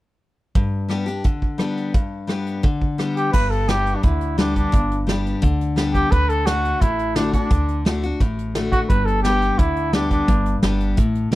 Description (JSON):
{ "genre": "honky-tonk and classic country", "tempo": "172 BPM", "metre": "4/4", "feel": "straight", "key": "G major", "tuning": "A4 = 440 Hz", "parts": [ { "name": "picked steel-string acoustic guitar", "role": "accompaniment", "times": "0.6-11.4 s", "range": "G2 to G4", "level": "-23 LUFS", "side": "left 3 dB", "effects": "none" }, { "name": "soft brush drum kit", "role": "drums", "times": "0.6-11.4 s", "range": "crash cymbal, hi-hat, kick drum, rim click, snare drum", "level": "-20 LUFS", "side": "right 1 dB", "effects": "none" }, { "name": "mellow trumpet", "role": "melody", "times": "3.2-10.6 s", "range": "D4 to B4", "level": "-22 LUFS", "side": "equal", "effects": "none" }, { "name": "upright bass", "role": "bass", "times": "3.3-11.4 s", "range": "G1 to D2", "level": "-23 LUFS", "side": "equal", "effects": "none" } ], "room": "small room ambience", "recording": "dry, close 1970s-style studio recording", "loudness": "-18 LUFS", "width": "side -17 dB against mid", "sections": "0.5-3.3 A section; 3.3-11.4 B section", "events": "none", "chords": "0.5 G; 6.1 D; 8.9 G" }